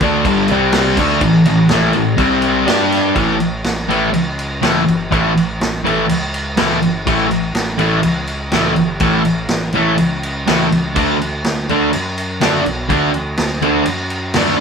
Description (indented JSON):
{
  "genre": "garage rock duo or trio",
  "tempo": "123 BPM",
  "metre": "4/4",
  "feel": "straight",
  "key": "A mixolydian",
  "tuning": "A4 = 440 Hz",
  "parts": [
    { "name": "fuzz guitar", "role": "riff", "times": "0.0-14.6 s", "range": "G2 to G4", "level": "-14 LUFS", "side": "equal", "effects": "distortion" },
    { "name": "fuzz picked electric bass", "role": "bass", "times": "0.0-14.6 s", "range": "G1 to G2", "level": "-23 LUFS", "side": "right 1 dB", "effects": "overdrive" },
    { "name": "vintage drum kit", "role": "drums", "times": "0.0-14.5 s", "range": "crash cymbal, kick drum, snare drum", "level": "-20 LUFS", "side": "right 1 dB", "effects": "none" }
  ],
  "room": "moderate studio reverb, RT60 0.6 s",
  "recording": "band playing live in one room",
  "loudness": "-13 LUFS",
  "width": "side -6 dB against mid",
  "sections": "0.0-3.2 A section; 3.2-14.6 B section",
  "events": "none",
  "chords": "0.5 C5; 1.0 A5; 2.2 C5; 2.7 G5; 3.2 A; 11.0 D"
}